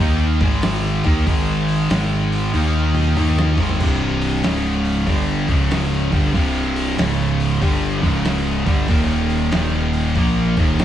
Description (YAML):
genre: stoner and doom metal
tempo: 94 BPM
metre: 4/4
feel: swing 65% on 8ths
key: unclear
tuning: A4 = 439 Hz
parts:
  - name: thick fuzz guitar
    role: riff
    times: 0.0-10.8 s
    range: C2 to Eb4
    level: -23 LUFS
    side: left 6 dB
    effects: distortion
  - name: thick fuzz guitar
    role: riff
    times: 0.0-10.8 s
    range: C2 to Eb4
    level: -22 LUFS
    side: right 6 dB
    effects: distortion
  - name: tight distorted guitar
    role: riff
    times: 0.0-10.8 s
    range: C2 to Eb4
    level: -24 LUFS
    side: left 1 dB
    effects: distortion
  - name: growling picked electric bass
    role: bass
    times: 0.0-10.8 s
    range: C1 to Eb2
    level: -23 LUFS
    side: equal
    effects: overdrive
  - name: dusty soul sampler-style drum kit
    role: drums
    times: 0.0-10.8 s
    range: crash cymbal, hi-hat, kick drum, snare drum, toms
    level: -22 LUFS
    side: equal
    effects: none
room: moderate stone room reverb, RT60 1.1 s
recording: band playing live in one room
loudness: -16 LUFS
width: side -11 dB against mid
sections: 0.0-10.8 A section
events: drum fill 2.5-3.8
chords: 0.0 Ab5; 2.5 Eb5; 3.2 Ab5; 3.8 C5; 4.4 Db5; 5.1 G5; 5.4 Db5; 6.0 C5; 7.0 Db5; 7.6 G5; 7.9 Db5; 8.6 G5; 8.9 Eb5